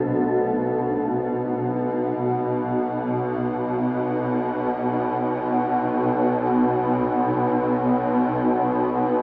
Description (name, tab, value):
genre	dark ambient drone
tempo	free time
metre	none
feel	none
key	unclear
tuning	A4 = 440 Hz
part	deep dark ambient pad	sustained chords	0.0-0.7 s	B2 to C5	-29 LUFS	equal	none
part	swarming drone	drone	0.0-9.2 s	B1 to B2	-20 LUFS	equal	built-in reverb
part	wind-like tuned noise texture	texture	0.0-0.7 s	A3 to A4	-33 LUFS	equal	built-in reverb
room	wet huge ambient reverb, RT60 7.0 s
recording	small speaker sound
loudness	-20 LUFS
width	side -27 dB against mid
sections	0.7-9.2 A section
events	none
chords	0.0 D5/B; 0.7 N.C.